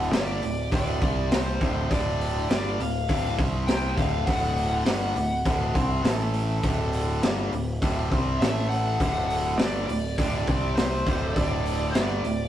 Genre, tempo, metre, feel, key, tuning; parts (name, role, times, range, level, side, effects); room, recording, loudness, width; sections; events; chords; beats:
blues rock power trio and southern rock; 102 BPM; 4/4; straight; D mixolydian; A4 = 440 Hz
dark smooth lead guitar; melody; 0.0-12.5 s; C5 to G5; -30 LUFS; equal; wah, overdrive
biting overdriven guitar; riff; 0.0-12.5 s; D2 to C4; -29 LUFS; equal
growling picked electric bass; bass; 0.0-12.5 s; D1 to C2; -28 LUFS; equal; overdrive
raw garage drum kit; drums; 0.1-12.4 s; hi-hat, kick drum, snare drum; -27 LUFS; equal
moderate stone room reverb, RT60 1.0 s; rough rehearsal-room recording, tube saturation; -23 LUFS; side -11 dB against mid
0.0-12.5 A section
0.0 D5; 1.0 C5; 1.6 D5; 3.4 C5; 4.0 D; 6.0 A5; 6.6 D5; 8.4 A5; 9.0 D; 10.5 C5; 11.1 D5
0.13 0.72 1.31 | 1.91 2.50 3.09 3.68 | 4.27 4.87 5.46 6.05 | 6.64 7.23 7.82 8.41 | 9.00 9.59 10.18 10.77 | 11.36 11.95